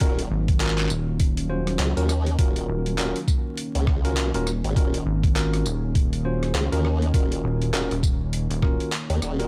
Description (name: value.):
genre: glitch hop.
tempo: 101 BPM.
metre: 4/4.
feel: swing 59% on 16ths.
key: Eb minor.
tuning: A4 = 441 Hz.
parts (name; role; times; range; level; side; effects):
warm analog pad; sustained chords; 0.0-9.5 s; Eb3 to Ab4; -34 LUFS; equal; chorus, sidechain pumping.
tine electric piano; stabs; 0.0-9.5 s; Db4 to C5; -32 LUFS; equal; vintage 12-bit sampler grit, sidechain pumping, tape echo.
formant-sweep wobble bass; bass; 0.0-9.5 s; Eb1 to Eb2; -27 LUFS; equal; chorus.
boom bap sampler-style drum kit; drums; 0.0-9.5 s; handclaps, hi-hat, rim click, tambourine; -33 LUFS; equal; none.
electronic kick drum; drums; 0.0-8.8 s; none; -24 LUFS; equal; none.
rubbery square bass; bass; 0.3-8.8 s; Eb1 to Ab1; -28 LUFS; equal; none.
room: digital ambience.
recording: vinyl crackle.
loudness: -23 LUFS.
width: mono.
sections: 0.0-9.5 A section.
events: none.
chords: 0.0 Ebm7.